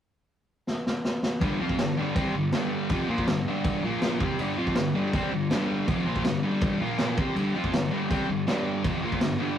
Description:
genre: garage rock duo or trio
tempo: 161 BPM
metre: 4/4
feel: straight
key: G minor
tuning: A4 = 440 Hz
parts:
  - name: vintage drum kit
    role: drums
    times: 0.7-9.3 s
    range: crash cymbal, kick drum, snare drum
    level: -28 LUFS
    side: equal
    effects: none
  - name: thick fuzz guitar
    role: riff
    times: 1.4-9.6 s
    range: F2 to F4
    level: -26 LUFS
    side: equal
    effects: distortion
room: wet small room reverb, RT60 0.5 s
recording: rough rehearsal-room recording, warm saturation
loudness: -24 LUFS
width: side -9 dB against mid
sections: 0.0-1.4 A section; 1.4-9.6 B section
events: drum fill 0.7-1.4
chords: 0.0 N.C.; 1.4 Gm; 3.8 Bb5; 4.2 Gm; 6.8 Bb5; 7.2 Gm

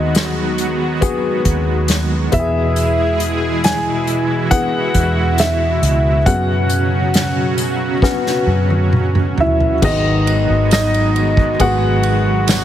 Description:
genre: pop ballad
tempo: 68 BPM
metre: 4/4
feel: straight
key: G# minor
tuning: A4 = 440 Hz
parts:
  - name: dark baby grand piano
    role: melody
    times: 0.0-12.6 s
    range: D#4 to G#5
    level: -19 LUFS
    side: equal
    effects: digital delay
  - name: felt-muted upright piano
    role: accompaniment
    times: 0.0-12.6 s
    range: G#2 to G#4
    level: -22 LUFS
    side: left 5 dB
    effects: none
  - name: lush unison pad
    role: sustained chords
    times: 0.0-12.6 s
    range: B2 to G#4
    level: -20 LUFS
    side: right 1 dB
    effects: chorus, tremolo
  - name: vintage muted fingered electric bass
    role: bass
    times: 0.0-12.6 s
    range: G#1 to F#2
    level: -19 LUFS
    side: equal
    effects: none
  - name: unplugged drum kit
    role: drums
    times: 0.1-12.6 s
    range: crash cymbal, hi-hat, kick drum, ride cymbal, snare drum, toms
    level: -19 LUFS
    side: equal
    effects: none
  - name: tambourine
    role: percussion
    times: 10.7-12.6 s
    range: none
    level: -28 LUFS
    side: right 13 dB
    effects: none
room: light reverb, small room ambience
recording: heavily compressed radio sound, multiband compression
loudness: -13 LUFS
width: side -11 dB against mid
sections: 0.0-9.8 A section; 9.8-12.6 B section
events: drum fill 8.0-9.8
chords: 0.0 G#m7/D#; 2.3 E; 6.3 F#sus4; 9.8 G#m7

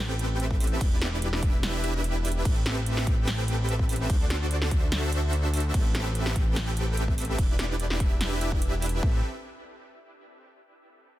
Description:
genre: future bass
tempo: 146 BPM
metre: 4/4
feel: half-time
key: A dorian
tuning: A4 = 440 Hz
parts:
  - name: supersaw chords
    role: riff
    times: 0.0-9.2 s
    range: C4 to G5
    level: -32 LUFS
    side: equal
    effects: sidechain pumping, dub echo
  - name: fat analog bass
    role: bass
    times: 0.0-9.2 s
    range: E1 to D2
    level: -28 LUFS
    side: equal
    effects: sidechain pumping
  - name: big-room dance drum kit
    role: drums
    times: 0.2-9.0 s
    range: crash cymbal, hi-hat, snare drum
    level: -33 LUFS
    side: right 1 dB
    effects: studio reverb
  - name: electronic kick drum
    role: drums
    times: 0.5-9.1 s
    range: none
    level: -25 LUFS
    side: equal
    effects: studio reverb
room: digital ambience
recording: dense, heavily limited modern master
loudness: -24 LUFS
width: side -15 dB against mid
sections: 0.0-9.0 A section; 9.0-10.7 B section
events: drop 0.0-9.0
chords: 0.0 Am9; 0.8 Em7; 2.5 Am9; 4.1 D9; 5.7 Am9; 7.4 Em7; 9.0 Am9

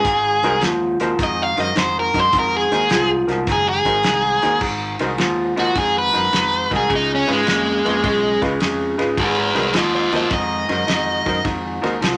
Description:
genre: electric blues shuffle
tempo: 105 BPM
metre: 4/4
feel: swing 67% on 8ths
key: Ab mixolydian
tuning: A4 = 439 Hz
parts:
  - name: overdriven electric guitar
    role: melody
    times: 0.0-11.4 s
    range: Ab3 to F5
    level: -20 LUFS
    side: equal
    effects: none
  - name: electric guitar through a small old amp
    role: riff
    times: 0.0-12.2 s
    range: Ab2 to Bb3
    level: -24 LUFS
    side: equal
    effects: none
  - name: fingered electric bass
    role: bass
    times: 0.0-12.2 s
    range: Gb1 to Ab2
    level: -32 LUFS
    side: equal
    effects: none
  - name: warm soul drum kit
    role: drums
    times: 0.0-12.2 s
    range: crash cymbal, hi-hat, kick drum, ride cymbal, snare drum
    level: -27 LUFS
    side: equal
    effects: none
  - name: warm grand piano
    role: accompaniment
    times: 0.4-11.9 s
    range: Eb4 to Eb5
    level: -29 LUFS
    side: equal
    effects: none
room: moderate studio reverb, RT60 0.7 s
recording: none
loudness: -19 LUFS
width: mono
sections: 0.0-4.6 A section; 4.6-12.2 A section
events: overdriven electric guitar solo 0.0-12.2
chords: 0.1 Ab7; 6.9 Db7; 9.2 Ab7

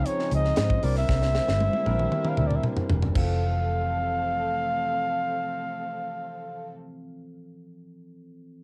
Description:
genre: polished 1980s jazz-funk pop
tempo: 116 BPM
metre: 4/4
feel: straight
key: F major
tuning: A4 = 440 Hz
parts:
  - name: warm flugelhorn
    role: melody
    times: 0.0-6.7 s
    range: Db5 to F5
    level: -30 LUFS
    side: equal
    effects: none
  - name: tine electric piano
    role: accompaniment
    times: 0.0-8.6 s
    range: E3 to Bb4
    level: -37 LUFS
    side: equal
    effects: lush chorus, cassette tape
  - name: warm chamber string section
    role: sustained chords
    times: 0.0-6.7 s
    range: C3 to C5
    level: -40 LUFS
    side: equal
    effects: cassette tape
  - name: vintage muted fingered electric bass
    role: bass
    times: 0.0-6.7 s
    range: E1 to Ab2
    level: -29 LUFS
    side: equal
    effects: none
  - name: crisp fusion drum kit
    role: drums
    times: 0.1-3.3 s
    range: crash cymbal, hi-hat, kick drum, snare drum, toms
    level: -30 LUFS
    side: equal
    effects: cassette tape
room: light reverb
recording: home recording on cassette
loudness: -26 LUFS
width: mono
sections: 0.0-3.2 A section; 3.2-7.3 B section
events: drum fill 1.1-3.2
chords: 0.0 Dbmaj9; 0.8 C9; 3.2 Fmaj7

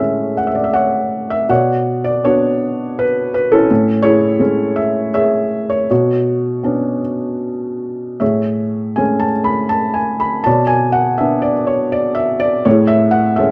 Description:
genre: classical, lyrical solo piano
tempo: 80 BPM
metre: 3/4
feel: rubato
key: A major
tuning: A4 = 440 Hz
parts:
  - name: felt-muted upright piano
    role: solo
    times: 0.0-13.5 s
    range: A2 to B5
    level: -16 LUFS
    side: equal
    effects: none
room: moderate recital hall reverb, RT60 1.4 s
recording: dark, warm production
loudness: -16 LUFS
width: mono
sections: 0.0-13.5 A section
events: none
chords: 0.0 Amaj7; 1.5 Bmadd9; 3.7 Amaj7; 5.9 Bmadd9; 8.2 Amaj7; 10.5 Bmadd9; 12.7 Amaj7

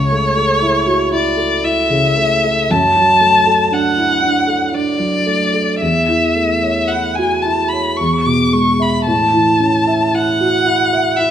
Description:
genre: classical, romantic duo for violin and grand piano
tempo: 54-62 BPM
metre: 3/4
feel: rubato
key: A major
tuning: A4 = 440 Hz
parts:
  - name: rich violin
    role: melody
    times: 0.0-11.3 s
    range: C#5 to D6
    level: -14 LUFS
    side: left 1 dB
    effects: none
  - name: dark grand piano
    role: accompaniment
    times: 0.0-11.3 s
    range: C#2 to E5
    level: -16 LUFS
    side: right 1 dB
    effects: none
room: wet recital hall reverb, RT60 1.5 s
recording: none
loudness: -12 LUFS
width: side -10 dB against mid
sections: 0.0-11.3 A section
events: none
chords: 0.0 A/C#; 2.7 D/F#; 5.8 A/E; 8.0 E; 9.1 A

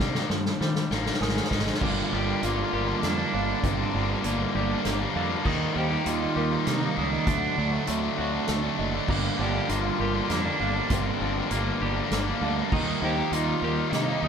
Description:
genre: post-rock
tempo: 99 BPM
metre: 3/4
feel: straight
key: G minor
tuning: A4 = 440 Hz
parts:
  - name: pedal steel guitar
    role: sustained chords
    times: 0.0-14.3 s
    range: Eb3 to Eb6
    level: -40 LUFS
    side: right 4 dB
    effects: none
  - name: felt-muted upright piano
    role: arpeggios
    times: 0.0-14.3 s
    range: Bb4 to Eb6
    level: -40 LUFS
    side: right 5 dB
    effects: none
  - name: twangy electric guitar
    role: arpeggios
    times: 0.0-14.3 s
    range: G2 to G4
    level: -35 LUFS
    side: left 2 dB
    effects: none
  - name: distorted electric guitar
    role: riff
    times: 0.0-14.3 s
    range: G2 to Eb4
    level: -30 LUFS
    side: left 8 dB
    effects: overdrive
  - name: fuzz fingered electric bass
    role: bass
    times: 0.0-14.3 s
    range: F#1 to Eb3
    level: -31 LUFS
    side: right 1 dB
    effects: overdrive
  - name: soft-mallet drum kit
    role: drums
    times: 0.0-14.1 s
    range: crash cymbal, hi-hat, kick drum, snare drum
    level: -30 LUFS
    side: equal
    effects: none
  - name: crunchy overdriven guitar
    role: riff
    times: 1.8-14.3 s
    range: G2 to Eb4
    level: -30 LUFS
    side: right 8 dB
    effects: phaser
  - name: rich cello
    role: melody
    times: 2.1-14.3 s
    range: Bb3 to G4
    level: -32 LUFS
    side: equal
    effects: none
room: moderate studio reverb, RT60 0.7 s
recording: band playing live in one room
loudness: -24 LUFS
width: side -7 dB against mid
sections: 0.0-1.8 A section; 1.8-14.3 B section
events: build-up 0.0-1.8; drum fill 0.0-1.8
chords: 0.0 Ebadd9; 1.2 Ab5; 1.8 Gm7; 5.5 Eb; 7.3 D; 9.1 Gm7; 12.7 Eb

